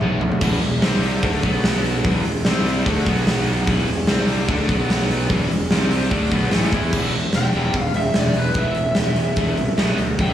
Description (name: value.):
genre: hard rock.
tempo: 147 BPM.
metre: 4/4.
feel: straight.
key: E minor.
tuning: A4 = 439 Hz.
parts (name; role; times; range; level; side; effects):
cranked stack guitar; riff; 0.0-10.3 s; E2 to E4; -23 LUFS; equal; overdrive, slapback echo.
fuzz fingered electric bass; bass; 0.0-10.3 s; E1 to E2; -21 LUFS; equal; overdrive.
huge arena drum kit; drums; 0.0-10.3 s; crash cymbal, hi-hat, kick drum, snare drum, toms; -21 LUFS; equal; none.
lead guitar through a small cranked amp; melody; 7.4-10.3 s; B4 to G5; -26 LUFS; equal; overdrive, slapback echo, analog delay.
room: studio reverb.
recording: live gig heard through the venue's PA, recital hall reverb, small room reverb.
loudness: -17 LUFS.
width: side -11 dB against mid.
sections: 0.4-6.9 A section; 6.9-10.3 B section.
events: drum fill 0.0-0.4; lead electric guitar solo 6.9-10.3.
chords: 0.0 B5; 0.4 E5; 0.8 C5; 1.2 D5; 1.4 B5; 2.0 E5; 2.5 C5; 2.9 D5; 3.1 B5; 3.7 E5; 4.1 C5; 4.5 D5; 4.7 B5; 5.3 E5; 5.7 C5; 6.1 E5; 6.9 Em; 9.8 B5.